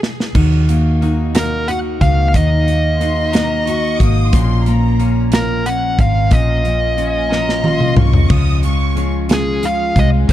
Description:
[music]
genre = six-eight pop ballad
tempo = 60 BPM (dotted quarters)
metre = 6/8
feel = straight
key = unclear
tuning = A4 = 440 Hz
[part]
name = modern studio drum kit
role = drums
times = 0.0-10.3 s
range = crash cymbal, hi-hat, kick drum, snare drum, toms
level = -17 LUFS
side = equal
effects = none
[part]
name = fingerpicked steel-string acoustic guitar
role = accompaniment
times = 0.3-10.3 s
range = Bb2 to Gb4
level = -20 LUFS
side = right 1 dB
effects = double-tracked left and right
[part]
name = clean electric guitar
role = arpeggios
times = 0.3-10.3 s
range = Bb2 to Gb4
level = -25 LUFS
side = left 7 dB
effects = none
[part]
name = vintage muted fingered electric bass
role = bass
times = 0.3-10.3 s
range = Ab1 to Eb2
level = -16 LUFS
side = equal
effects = none
[part]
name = fuzz lead guitar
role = melody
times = 1.4-10.3 s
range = Ab4 to Gb5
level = -20 LUFS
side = equal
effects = distortion, digital delay
[part]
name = rich studio violin section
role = second line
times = 3.0-9.1 s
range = Ab5 to Eb6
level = -26 LUFS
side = equal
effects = none
[sound]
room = little or no reverb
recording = dark, warm production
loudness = -12 LUFS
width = side -12 dB against mid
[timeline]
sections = 0.3-10.3 A section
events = drum fill 0.0-0.3, 7.3-8.3; stop 0.0-0.3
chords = 0.3 Ebm; 4.3 Bbm; 8.3 Db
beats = | 0.35 1.35 | 2.34 3.33 | 4.33 5.32 | 6.32 7.31 | 8.30 9.29 | 10.29

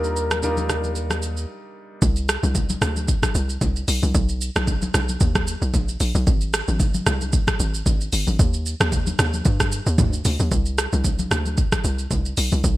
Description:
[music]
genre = amapiano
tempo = 113 BPM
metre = 4/4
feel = swing 55% on 16ths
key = unclear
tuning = A4 = 443 Hz
[part]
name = warm velvety synth lead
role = melody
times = 0.0-1.5 s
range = Bb4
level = -28 LUFS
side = equal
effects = chorus, digital delay
[part]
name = clear baby grand piano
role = accompaniment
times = 0.0-2.0 s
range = G3 to Bb4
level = -30 LUFS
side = equal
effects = none
[part]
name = saturated sub bass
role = bass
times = 0.0-1.5 s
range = Eb2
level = -26 LUFS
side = equal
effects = none
[part]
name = deep house drum kit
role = drums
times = 0.0-12.8 s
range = hi-hat, kick drum, rim click, shaker, toms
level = -22 LUFS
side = equal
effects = none
[part]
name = congas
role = percussion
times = 0.3-12.6 s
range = none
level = -30 LUFS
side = left 2 dB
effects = none
[part]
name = tight log drum bass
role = bass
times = 2.0-12.8 s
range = G1 to G2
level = -22 LUFS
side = equal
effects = none
[sound]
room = digital ambience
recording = bright 1980s-style digital production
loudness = -19 LUFS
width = side -16 dB against mid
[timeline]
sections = 0.0-2.0 A section; 2.0-12.8 B section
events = break 1.5-2.0; drop 2.0-12.8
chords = 0.0 Ebmaj9; 2.0 Csus2; 4.1 Bmaj7; 6.3 Ab; 8.4 Ebmaj7; 10.5 Csus2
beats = 0.43 0.96 1.49 | 2.02 2.55 3.08 3.61 | 4.14 4.68 5.21 5.74 | 6.27 6.80 7.33 7.86 | 8.39 8.92 9.45 9.98 | 10.52 11.05 11.58 12.11 | 12.64

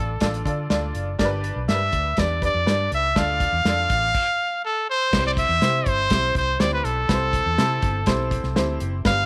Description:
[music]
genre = uptempo 1960s-style soul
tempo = 122 BPM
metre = 4/4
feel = straight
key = C major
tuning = A4 = 440 Hz
[part]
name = bright trumpet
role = melody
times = 0.0-9.3 s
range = A4 to F5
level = -25 LUFS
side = equal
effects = none
[part]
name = bright upright piano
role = accompaniment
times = 0.0-9.3 s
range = B3 to D5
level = -30 LUFS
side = equal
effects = none
[part]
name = vintage muted fingered electric bass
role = bass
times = 0.0-9.3 s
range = F#1 to D3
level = -29 LUFS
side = equal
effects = none
[part]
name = natural country drum kit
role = drums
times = 0.2-9.2 s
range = crash cymbal, hi-hat, kick drum, snare drum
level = -26 LUFS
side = equal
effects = none
[sound]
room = moderate spring reverb, RT60 2.2 s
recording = none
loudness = -22 LUFS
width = mono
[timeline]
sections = 0.0-5.1 A section; 5.1-9.3 B section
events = stop 4.1-5.1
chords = 0.0 Dm; 1.2 G; 3.2 Dm; 5.1 C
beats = 0.22 0.71 | 1.20 1.69 2.18 2.67 | 3.17 3.66 4.15 4.64 | 5.13 5.62 6.11 6.60 | 7.09 7.58 8.07 8.56 | 9.05

